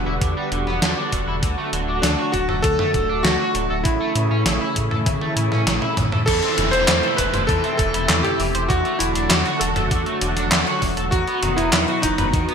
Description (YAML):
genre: synthwave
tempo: 99 BPM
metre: 4/4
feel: straight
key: unclear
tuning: A4 = 439 Hz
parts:
  - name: clear electric grand piano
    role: melody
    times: 0.0-12.5 s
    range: D4 to C5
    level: -23 LUFS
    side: equal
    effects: lush chorus, digital delay
  - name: analog string pad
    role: sustained chords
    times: 0.0-12.5 s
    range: B2 to F#4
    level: -26 LUFS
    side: right 1 dB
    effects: ensemble chorus, sidechain pumping
  - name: dark detuned saw bass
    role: bass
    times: 0.0-12.5 s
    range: D1 to A2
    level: -25 LUFS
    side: equal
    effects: none
  - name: electric guitar at the edge of break-up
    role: arpeggios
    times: 0.1-12.5 s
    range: C#3 to C5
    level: -26 LUFS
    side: equal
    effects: analog chorus, ping-pong delay
  - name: electronic kick drum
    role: drums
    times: 0.2-12.5 s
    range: none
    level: -24 LUFS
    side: equal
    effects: overdrive, small room ambience
  - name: gated 80s digital drum machine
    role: drums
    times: 0.2-12.5 s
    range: crash cymbal, handclaps, hi-hat, snare drum, toms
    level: -22 LUFS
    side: equal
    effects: gated reverb, gated reverb snare, overdrive, small room ambience
  - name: downlifter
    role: sound effects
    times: 6.3-11.1 s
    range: none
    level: -28 LUFS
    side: equal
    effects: none
room: moderate plate reverb, RT60 2.1 s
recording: bright 1980s-style digital production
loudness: -17 LUFS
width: side -6 dB against mid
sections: 0.0-6.3 A section; 6.3-12.5 B section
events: drum fill 5.1-6.3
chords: 0.0 Em7; 1.4 D; 3.9 A; 6.3 Am/E; 8.7 D/E; 11.1 B/E